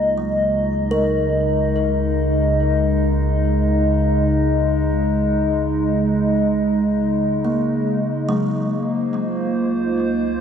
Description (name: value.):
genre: ambient.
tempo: free time.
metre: none.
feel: none.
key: Db major.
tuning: A4 = 440 Hz.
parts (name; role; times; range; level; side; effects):
warbly tape-like pad; sustained chords; 0.0-10.4 s; Db3 to Eb5; -18 LUFS; left 1 dB; chorus, built-in reverb.
kalimba; arpeggios; 0.0-8.6 s; Gb3 to Bb5; -26 LUFS; right 1 dB; tape echo.
deep rumbling drone; bass; 0.0-10.4 s; Db2; -24 LUFS; right 1 dB; built-in reverb.
room: wet huge ambient reverb, RT60 8.2 s.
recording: in a vast, echoing space.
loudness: -17 LUFS.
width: side -8 dB against mid.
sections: 0.0-10.4 A section.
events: fade-out on synth drone 0.0-10.4.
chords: 0.0 Dbsus2; 8.4 Bbmadd9/Db.